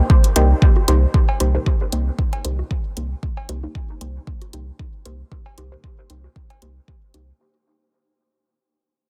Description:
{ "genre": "dub techno", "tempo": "115 BPM", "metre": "4/4", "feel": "swing 55% on 16ths", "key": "C minor", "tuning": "A4 = 440 Hz", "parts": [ { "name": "filtered dub chord stab", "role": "stabs", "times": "0.0-7.3 s", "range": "Bb3 to C5", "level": "-28 LUFS", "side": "equal", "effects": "phaser, sidechain pumping, dub echo" }, { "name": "electronic kick drum", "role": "drums", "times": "0.1-7.0 s", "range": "none", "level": "-19 LUFS", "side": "equal", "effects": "none" }, { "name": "electronic hi-hat", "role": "drums", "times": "0.2-7.3 s", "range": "none", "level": "-26 LUFS", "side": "equal", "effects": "none" }, { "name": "warbly dusty pluck", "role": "riff", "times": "0.4-6.8 s", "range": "Bb4 to G5", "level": "-32 LUFS", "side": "equal", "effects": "chorus, sidechain pumping, dub echo" }, { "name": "warm sub bass", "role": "bass", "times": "0.4-7.3 s", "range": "C2", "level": "-21 LUFS", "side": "equal", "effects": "sidechain pumping" }, { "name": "bongos and cowbell", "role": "percussion", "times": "0.8-7.3 s", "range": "none", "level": "-34 LUFS", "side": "equal", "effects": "sidechain pumping on perc, dub echo" } ], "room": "digital ambience", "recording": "dense, heavily limited modern master", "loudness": "-19 LUFS", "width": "mono", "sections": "0.0-7.4 A section", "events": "fade-out 0.0-7.4; filter sweep on synth stab 0.0-7.4", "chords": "0.0 Cm7" }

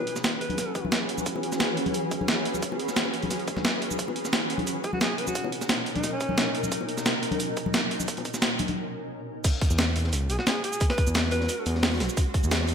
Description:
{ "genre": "liquid drum and bass", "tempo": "176 BPM", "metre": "4/4", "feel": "straight", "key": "unclear", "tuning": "A4 = 436 Hz", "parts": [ { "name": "breathy alto saxophone", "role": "melody", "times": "0.0-0.9, 4.8-6.6, 10.3-11.8 s", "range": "C#4 to B4", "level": "-32 LUFS", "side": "equal", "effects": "low-pass filter, ping-pong delay" }, { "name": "shimmering ambient pad", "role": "sustained chords", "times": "0.0-12.7 s", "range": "B2 to B4", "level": "-32 LUFS", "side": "equal", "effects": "chorus, built-in reverb" }, { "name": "breakbeat sampler-style drum kit", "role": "drums", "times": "0.1-12.7 s", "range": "cabasa, crash cymbal, hi-hat, snare drum", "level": "-27 LUFS", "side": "right 1 dB", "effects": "studio reverb" }, { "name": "bongos and congas", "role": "percussion", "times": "0.3-8.8 s", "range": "none", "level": "-34 LUFS", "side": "left 3 dB", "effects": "none" }, { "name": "electronic kick drum", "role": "drums", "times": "0.8-12.4 s", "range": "none", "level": "-27 LUFS", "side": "equal", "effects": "high-pass filter on kick, studio reverb, high-pass filter on room" }, { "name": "crunchy breakbeat drum kit", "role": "drums", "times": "9.4-12.7 s", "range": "hi-hat, snare drum", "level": "-34 LUFS", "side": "equal", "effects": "high-pass filter on hats, studio reverb, high-pass filter on snare, high-pass filter on room" }, { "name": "smooth gliding synth bass", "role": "bass", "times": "9.7-12.7 s", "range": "B1 to E2", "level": "-26 LUFS", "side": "equal", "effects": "tube saturation" } ], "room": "moderate lush hall reverb, RT60 1.7 s, small room ambience", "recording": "dreamy mix soaked in reverb", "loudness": "-24 LUFS", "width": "side -7 dB against mid", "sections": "0.0-9.4 A section; 9.4-12.7 B section", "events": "build-up 0.0-9.4; break 8.8-9.4; drop 9.4-12.7", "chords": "0.0 E69; 4.0 Bmaj7; 9.4 E69" }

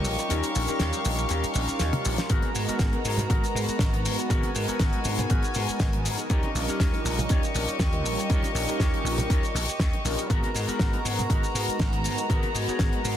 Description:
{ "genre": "nu-disco, nu disco", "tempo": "120 BPM", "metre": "4/4", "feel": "swing 53% on 16ths", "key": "G# dorian", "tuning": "A4 = 441 Hz", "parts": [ { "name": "mellow synth brass", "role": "accompaniment", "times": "0.0-13.2 s", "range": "G3 to A#4", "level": "-32 LUFS", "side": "equal", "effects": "chorus, phaser, sidechain pumping, digital delay" }, { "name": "warm studio violin section", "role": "sustained chords", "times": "0.0-13.2 s", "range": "B3 to C#6", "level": "-32 LUFS", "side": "left 1 dB", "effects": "sidechain pumping" }, { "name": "vintage slap bass", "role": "bass", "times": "0.0-13.2 s", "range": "G#1 to G#2", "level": "-30 LUFS", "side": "equal", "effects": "none" }, { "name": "damped 70s drum kit", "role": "drums", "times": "0.0-13.2 s", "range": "hi-hat, shaker, snare drum, toms", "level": "-31 LUFS", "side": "left 2 dB", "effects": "none" }, { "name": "electric guitar with an envelope filter", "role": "riff", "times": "0.2-13.0 s", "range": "B3 to C#5", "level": "-36 LUFS", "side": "left 2 dB", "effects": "wide subtle chorus, digital delay" }, { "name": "electronic kick drum", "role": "drums", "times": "2.3-12.9 s", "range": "none", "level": "-26 LUFS", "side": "equal", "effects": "none" }, { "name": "congas and bongos", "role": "percussion", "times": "2.4-12.5 s", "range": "none", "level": "-36 LUFS", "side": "right 2 dB", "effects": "none" } ], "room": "light reverb, small room ambience", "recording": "dense, heavily limited modern master", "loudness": "-23 LUFS", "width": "side -10 dB against mid", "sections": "0.0-13.2 A section", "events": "kick drops out 0.3-2.3; drum fill 1.8-2.3", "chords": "0.0 D#7; 2.3 G#m9; 6.3 D#7; 10.3 G#m9" }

